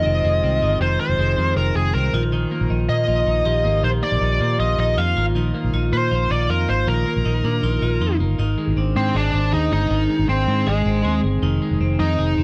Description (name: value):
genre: indie pop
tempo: 158 BPM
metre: 4/4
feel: straight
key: unclear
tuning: A4 = 441 Hz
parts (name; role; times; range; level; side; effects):
- smooth overdriven lead guitar; melody; 0.0-12.4 s; Ab3 to F5; -24 LUFS; equal; tape echo
- vibraphone with hard mallets; second line; 0.0-12.4 s; C4 to G4; -32 LUFS; equal; none
- dark woodwind section; sustained chords; 0.0-8.4 s; Bb2 to F4; -36 LUFS; equal; none
- twelve-string electric guitar; arpeggios; 0.0-12.4 s; Eb3 to Ab4; -28 LUFS; equal; none
- vintage muted fingered electric bass; bass; 0.1-12.4 s; F1 to Bb2; -23 LUFS; equal; none
room: light reverb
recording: none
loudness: -20 LUFS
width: mono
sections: 0.0-8.4 A section; 8.4-12.4 A section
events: none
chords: 0.0 Fm7; 2.1 Bbsus4; 8.4 Ab; 11.4 Fm7